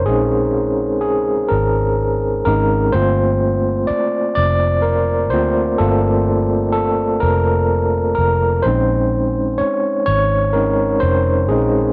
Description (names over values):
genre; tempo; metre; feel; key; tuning
slow six-eight R&B; 42 BPM (dotted quarters); 6/8; straight; unclear; A4 = 441 Hz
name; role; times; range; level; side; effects
overdriven tine electric piano; accompaniment; 0.0-11.9 s; Ab3 to D5; -18 LUFS; equal; fast tremolo, cassette tape
vintage muted fingered electric bass; bass; 0.0-11.9 s; F1 to D2; -22 LUFS; equal; none
room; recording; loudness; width
little or no reverb; home recording on cassette; -17 LUFS; mono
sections
0.0-11.9 A section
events
tine electric piano solo 0.0-11.9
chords
0.0 Bbm11; 2.9 Gm11; 8.6 Bbm11